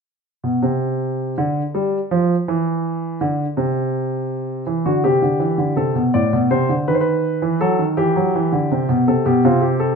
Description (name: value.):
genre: classical, baroque-style two-part invention for grand piano.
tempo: 55 BPM (dotted quarters).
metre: 6/8.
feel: straight.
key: A minor.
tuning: A4 = 440 Hz.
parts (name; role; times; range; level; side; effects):
warm baby grand piano; solo; 0.4-10.0 s; A2 to D5; -16 LUFS; equal; none.
room: wet stone room reverb, RT60 1.0 s.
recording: none.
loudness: -16 LUFS.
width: side -5 dB against mid.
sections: 0.2-10.0 A section.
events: none.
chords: 0.2 N.C.; 4.7 Em; 5.8 Am; 6.9 B/D#; 8.0 Em; 9.1 Am.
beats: | 0.25 1.37 | 2.47 3.58 | 4.68 5.76 | 6.86 7.96 | 9.05.